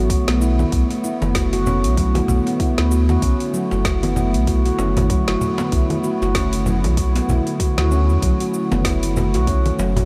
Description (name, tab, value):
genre	organic downtempo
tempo	96 BPM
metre	4/4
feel	swing 58% on 16ths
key	B minor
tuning	A4 = 440 Hz
part	warbly tape-like pad	sustained chords	0.0-10.1 s	D3 to F#4	-26 LUFS	equal	chorus, built-in reverb, sidechain pumping
part	handpan	arpeggios	0.0-10.1 s	F#3 to F#4	-25 LUFS	equal	analog delay
part	warm sub bass	bass	0.0-10.1 s	F#1 to E2	-22 LUFS	equal	tube saturation, sidechain pumping
part	quartz singing bowl	texture	0.0-10.1 s	none	barely audible	none	none
part	afro-pop drum kit	drums	0.1-10.1 s	congas, hi-hat, shaker, snare drum	-30 LUFS	equal	none
part	electronic kick drum	drums	0.1-9.6 s	none	-24 LUFS	equal	none
part	cajon	percussion	1.2-10.1 s	none	-30 LUFS	equal	none
room	moderate huge ambient reverb, RT60 7.6 s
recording	dreamy mix soaked in reverb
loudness	-19 LUFS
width	mono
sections	0.0-10.1 A section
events	none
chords	0.0 Bm7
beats	0.10 | 0.72 1.35 1.97 2.60 | 3.22 3.85 4.47 5.10 | 5.72 6.35 6.97 7.60 | 8.22 8.85 9.47